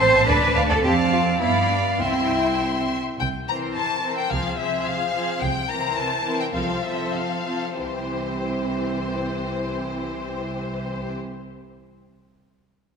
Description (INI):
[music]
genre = quick classical-period movement for string orchestra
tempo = 92-110 BPM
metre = 2/4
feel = rubato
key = C major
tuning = A4 = 440 Hz
[part]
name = rich studio violin section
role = melody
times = 0.0-11.1 s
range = C5 to C6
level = -28 LUFS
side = left 5 dB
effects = none
[part]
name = rich studio violin section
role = second line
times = 0.0-11.1 s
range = G4 to G5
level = -27 LUFS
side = left 1 dB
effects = none
[part]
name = warm studio viola section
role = accompaniment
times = 0.0-11.1 s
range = E3 to E4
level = -28 LUFS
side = right 1 dB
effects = none
[part]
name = rich studio cello section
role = bass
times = 0.0-11.1 s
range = C3 to C5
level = -26 LUFS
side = right 2 dB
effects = none
[part]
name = rich studio double bass section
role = bass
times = 0.0-11.1 s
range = A1 to G2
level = -28 LUFS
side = right 3 dB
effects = none
[sound]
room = wet concert hall reverb, RT60 2.0 s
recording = minimal, uncompressed stereo recording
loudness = -21 LUFS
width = side -6 dB against mid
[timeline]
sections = 0.0-3.2 A section; 3.2-7.8 B section; 7.8-10.4 C section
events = slowing down 4.9-7.8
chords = 0.3 D5; 0.8 Dm/F; 1.4 G7; 2.0 C; 4.3 Fm/C; 5.4 C7; 6.5 F/C; 7.8 C